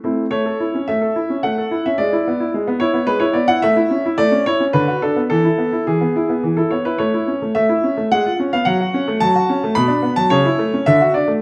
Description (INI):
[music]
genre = classical-period piano sonatina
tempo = 109 BPM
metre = 3/4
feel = rubato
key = A major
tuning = A4 = 440 Hz
[part]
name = bright baby grand piano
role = solo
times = 0.0-11.4 s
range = B2 to B5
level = -17 LUFS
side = equal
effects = none
[sound]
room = moderate recital hall reverb, RT60 1.6 s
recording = none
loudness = -17 LUFS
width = mono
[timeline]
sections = 0.3-11.4 A section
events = none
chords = 0.3 A; 2.0 E7/G#; 3.6 A; 4.7 Bm/D; 5.3 E; 7.0 A; 8.1 C#7/G#; 8.7 F#m; 9.7 Bm; 10.3 A/C#; 10.8 D